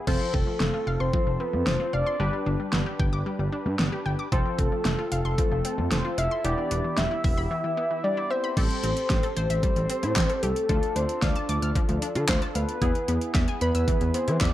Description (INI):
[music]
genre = synth-pop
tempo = 113 BPM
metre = 4/4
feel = straight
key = A minor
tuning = A4 = 438 Hz
[part]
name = funky polysynth comp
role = accompaniment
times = 0.0-14.5 s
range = B3 to B4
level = -34 LUFS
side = equal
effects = chorus
[part]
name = soft octave-layered synth lead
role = melody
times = 0.1-14.5 s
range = A4 to E5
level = -28 LUFS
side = left 1 dB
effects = chorus, tape echo
[part]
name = analog pluck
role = arpeggios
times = 0.1-14.5 s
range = E3 to F6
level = -33 LUFS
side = left 2 dB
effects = chorus, tape echo
[part]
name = smooth gliding synth bass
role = bass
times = 0.1-14.5 s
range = E1 to E3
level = -28 LUFS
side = equal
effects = none
[part]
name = pop drum kit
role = drums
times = 0.1-14.5 s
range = crash cymbal, handclaps, hi-hat, kick drum, snare drum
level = -26 LUFS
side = equal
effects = overdrive
[sound]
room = light reverb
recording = dark, warm production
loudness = -23 LUFS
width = side -13 dB against mid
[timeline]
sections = 0.1-8.6 A section; 8.6-14.5 B section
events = none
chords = 0.1 F; 2.2 G; 4.3 F; 6.4 Em; 8.6 Am7; 10.7 Dm; 12.8 E